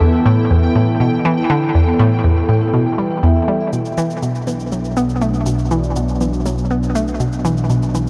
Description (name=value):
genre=ambient, sequencer-driven space music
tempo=121 BPM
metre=4/4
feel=straight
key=E minor, B minor from 3.7 s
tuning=A4 = 441 Hz
part: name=sweeping resonant pad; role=sustained chords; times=0.0-8.1 s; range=B2 to A4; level=-23 LUFS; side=equal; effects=chorus
part: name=vibraphone with soft mallets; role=arpeggios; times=0.0-8.1 s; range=F#3 to E5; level=-26 LUFS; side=equal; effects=delay
part: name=hollow square pluck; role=riff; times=0.0-8.1 s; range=E2 to B3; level=-18 LUFS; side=equal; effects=chorus, phaser, delay
part: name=pulsing gated texture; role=texture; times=0.0-3.8 s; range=E4 to G5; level=-31 LUFS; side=equal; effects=chorus, built-in reverb
part: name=fat analog bass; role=bass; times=3.7-8.1 s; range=B1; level=-26 LUFS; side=equal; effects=none
part: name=cabasa and congas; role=percussion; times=3.7-8.1 s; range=none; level=-33 LUFS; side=equal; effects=delay
room=moderate huge ambient reverb, RT60 8.3 s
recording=worn, warbling old tape, cassette tape, warbly pitch drift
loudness=-16 LUFS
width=mono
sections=0.0-3.7 A section; 3.7-8.1 B section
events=none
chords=0.0 Em; 3.7 Bm